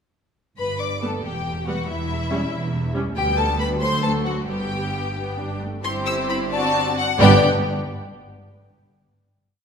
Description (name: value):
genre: quick classical-period movement for string orchestra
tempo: 85-94 BPM (dotted quarters)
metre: 6/8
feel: straight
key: G major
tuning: A4 = 440 Hz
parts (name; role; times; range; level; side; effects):
- warm studio violin section; melody; 0.6-7.5 s; E5 to E6; -26 LUFS; left 3 dB; none
- warm symphonic violin section; second line; 0.6-7.4 s; E4 to D5; -26 LUFS; left 2 dB; none
- rich symphonic cello section; bass; 0.6-7.4 s; D2 to G2; -27 LUFS; right 1 dB; none
- warm symphonic double bass section; bass; 0.6-7.5 s; E1 to D2; -27 LUFS; right 3 dB; none
- warm symphonic viola section; accompaniment; 1.0-7.5 s; F#3 to E4; -25 LUFS; equal; none
room: wet recital hall reverb, RT60 1.8 s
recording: recorded in a church or concert hall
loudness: -19 LUFS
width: side -6 dB against mid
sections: 0.6-5.8 A section; 5.8-7.2 coda; 7.2-8.6 final chord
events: none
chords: 0.6 G; 1.2 Em; 1.9 Em6; 3.2 G/D; 3.8 D; 4.5 G; 5.8 C/G; 6.5 D7/G; 7.2 G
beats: | 0.58 1.24 | 1.88 2.52 | 3.16 3.81 | 4.48 5.16 | 5.83 6.51 | 7.20